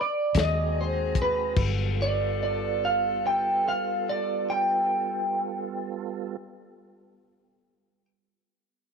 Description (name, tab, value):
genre	slow blues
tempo	48 BPM (dotted quarters)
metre	12/8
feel	straight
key	G mixolydian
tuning	A4 = 444 Hz
part	electric guitar at the edge of break-up	melody	0.0-8.1 s	B4 to G5	-26 LUFS	right 1 dB	lush chorus
part	mellow saxophone section	sustained chords	0.3-6.0 s	B3 to A4	-37 LUFS	left 14 dB	none
part	tonewheel organ	sustained chords	0.3-6.4 s	F#3 to Bb5	-35 LUFS	right 12 dB	overdrive, chorus vibrato, slow rotary speaker
part	vintage muted fingered electric bass	bass	0.3-6.0 s	G1 to Eb2	-29 LUFS	left 1 dB	none
part	warm soul drum kit	drums	0.3-1.8 s	crash cymbal, hi-hat, kick drum, snare drum	-28 LUFS	left 3 dB	none
room	light reverb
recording	1960s-style stereo with parts hard left and right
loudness	-24 LUFS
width	side -6 dB against mid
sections	0.0-1.6 A section; 1.6-6.6 B section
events	slowing down 0.0-1.6; clean electric guitar solo 0.0-1.6; stop 0.0-0.4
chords	0.4 Ab9; 1.6 G9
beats	0.35 | 1.56 2.82 4.08 5.33